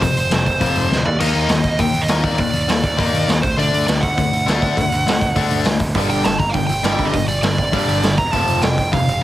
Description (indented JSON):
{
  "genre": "punk rock",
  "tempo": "202 BPM",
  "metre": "4/4",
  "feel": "straight",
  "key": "G minor",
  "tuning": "A4 = 440 Hz",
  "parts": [
    { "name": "nasal lead guitar with a parked wah", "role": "melody", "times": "0.0-9.2 s", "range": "C5 to Bb5", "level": "-21 LUFS", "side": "right 2 dB", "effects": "overdrive" },
    { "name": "distorted electric guitar", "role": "riff", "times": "0.0-9.1 s", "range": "F2 to Eb4", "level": "-21 LUFS", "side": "left 5 dB", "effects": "overdrive" },
    { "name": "growling picked electric bass", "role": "bass", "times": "0.0-9.2 s", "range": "E1 to Eb2", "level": "-22 LUFS", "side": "right 1 dB", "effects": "overdrive" },
    { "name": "raw garage drum kit", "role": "drums", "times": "0.0-9.2 s", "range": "crash cymbal, hi-hat, kick drum, snare drum, toms", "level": "-20 LUFS", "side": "right 1 dB", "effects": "none" },
    { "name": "tight distorted guitar", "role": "riff", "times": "6.0-9.1 s", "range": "F2 to G3", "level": "-25 LUFS", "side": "right 10 dB", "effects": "distortion" }
  ],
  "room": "little or no reverb",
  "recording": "heavily compressed radio sound",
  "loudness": "-15 LUFS",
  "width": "side -14 dB against mid",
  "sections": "0.0-9.2 A section",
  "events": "drum fill 0.9",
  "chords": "0.0 F5; 1.1 Eb5; 3.4 D; 6.0 G5; 8.3 F",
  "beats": "| 0.02 0.32 0.61 0.91 | 1.21 1.50 1.80 2.09 | 2.39 2.69 2.98 3.28 | 3.58 3.87 4.17 4.47 | 4.76 5.06 5.36 5.66 | 5.95 6.25 6.55 6.85 | 7.14 7.44 7.74 8.04 | 8.34 8.63 8.93"
}